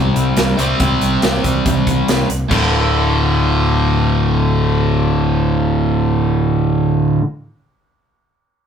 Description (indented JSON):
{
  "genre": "hard rock",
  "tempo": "140 BPM",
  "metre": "4/4",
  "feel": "straight",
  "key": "unclear",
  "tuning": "A4 = 440 Hz",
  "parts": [
    { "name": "distorted electric guitar", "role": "riff", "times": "0.0-7.2 s", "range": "D2 to C4", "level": "-15 LUFS", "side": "equal", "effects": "overdrive" },
    { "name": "growling fingered electric bass", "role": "bass", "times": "0.0-7.2 s", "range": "D1 to C2", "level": "-19 LUFS", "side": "equal", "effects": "overdrive" },
    { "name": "big rock drum kit", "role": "drums", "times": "0.2-2.6 s", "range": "crash cymbal, hi-hat, kick drum, snare drum", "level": "-19 LUFS", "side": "equal", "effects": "none" }
  ],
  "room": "moderate studio reverb, RT60 0.6 s",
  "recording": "rough rehearsal-room recording, tube saturation",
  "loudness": "-13 LUFS",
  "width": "side -8 dB against mid",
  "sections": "0.0-2.5 A section; 2.5-5.9 B section",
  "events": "none",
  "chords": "0.0 C5; 2.5 D5"
}